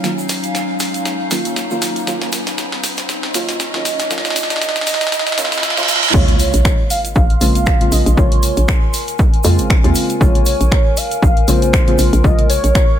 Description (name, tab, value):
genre	deep house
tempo	118 BPM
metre	4/4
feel	swing 56% on 16ths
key	Bb minor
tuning	A4 = 440 Hz
part	deep mellow chord stab	stabs	0.0-13.0 s	C3 to F4	-22 LUFS	equal	chorus, sidechain pumping, tape echo
part	deep house drum kit	drums	0.0-12.9 s	crash cymbal, finger snaps, hi-hat, snare drum	-21 LUFS	left 1 dB	high-pass filter on snare, high-pass filter on hats, high-pass filter on cymbals, high-pass filter on room
part	egg shaker	percussion	0.0-12.9 s	none	-28 LUFS	right 5 dB	none
part	riser, reverse cymbal and sub drop	sound effects	0.9-8.2 s	none	-22 LUFS	right 2 dB	none
part	warbly tape-like pad	texture	0.0-13.0 s	Gb3 to C6	-24 LUFS	equal	chorus, built-in reverb, sidechain pumping
part	warm velvety synth lead	melody	6.1-13.0 s	C5 to F5	-21 LUFS	equal	chorus, tape echo
part	hollow knocking FM bass	bass	6.1-12.7 s	Ab1 to F2	-16 LUFS	equal	sidechain pumping
part	electronic kick drum	drums	6.1-12.9 s	none	-13 LUFS	equal	none
room	light reverb, digital ambience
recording	high-pass filter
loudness	-13 LUFS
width	side -10 dB against mid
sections	0.0-6.1 A section; 6.1-13.0 B section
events	build-up 0.0-6.1; drum fill 0.0-6.1; filter sweep on synth stab 0.0-6.1; riser 0.9-6.1; reverse cymbal 5.1-6.1; drop 6.1-13.0; impact 6.1-8.2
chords	0.0 Ebm9; 6.1 Bbm9